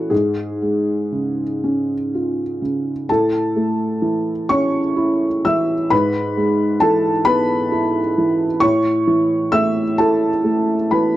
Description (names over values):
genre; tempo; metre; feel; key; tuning
neoclassical minimalist piano; 39-45 BPM (dotted quarters); 6/8; rubato; A major; A4 = 440 Hz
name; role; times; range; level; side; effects
felt-muted upright piano; solo; 0.0-11.2 s; G#2 to E6; -16 LUFS; equal; none
room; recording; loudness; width
light reverb; dry, close 1970s-style studio recording; -16 LUFS; side -14 dB against mid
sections
0.0-3.1 A section; 3.1-11.2 A section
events
none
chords
0.1 C#/G#; 3.1 A; 5.9 E/G#; 8.6 A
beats
| 0.11 1.62 | 3.08 4.50 | 5.91 7.27 | 8.62 10.00